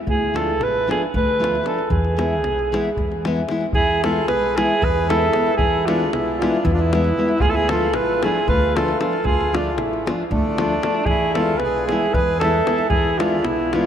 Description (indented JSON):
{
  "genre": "balkan folk, Balkan wedding band",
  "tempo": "229 BPM (eighths)",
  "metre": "7/8",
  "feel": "straight",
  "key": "unclear",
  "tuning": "A4 = 440 Hz",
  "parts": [
    { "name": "mellow alto saxophone", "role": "melody", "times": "0.1-13.9 s", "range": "D4 to B4", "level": "-20 LUFS", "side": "right 1 dB", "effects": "none" },
    { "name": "upright bass", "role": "bass", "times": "0.1-13.8 s", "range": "A1 to E2", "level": "-26 LUFS", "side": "equal", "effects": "none" },
    { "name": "davul", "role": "percussion", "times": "0.1-13.8 s", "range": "none", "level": "-26 LUFS", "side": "left 1 dB", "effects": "none" },
    { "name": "nylon-string guitar", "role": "accompaniment", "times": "0.3-13.9 s", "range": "E3 to F4", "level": "-25 LUFS", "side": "left 2 dB", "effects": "none" },
    { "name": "accordion", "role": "second line", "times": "3.8-13.9 s", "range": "A3 to G#4", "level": "-26 LUFS", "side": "equal", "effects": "none" }
  ],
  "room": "wet cathedral reverb, RT60 6.5 s",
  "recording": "in a vast, echoing space",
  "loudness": "-17 LUFS",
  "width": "side -9 dB against mid",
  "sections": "0.0-3.8 A section; 3.8-13.9 A section",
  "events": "none",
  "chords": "0.1 Dm; 1.9 E; 7.4 Dm; 11.1 E"
}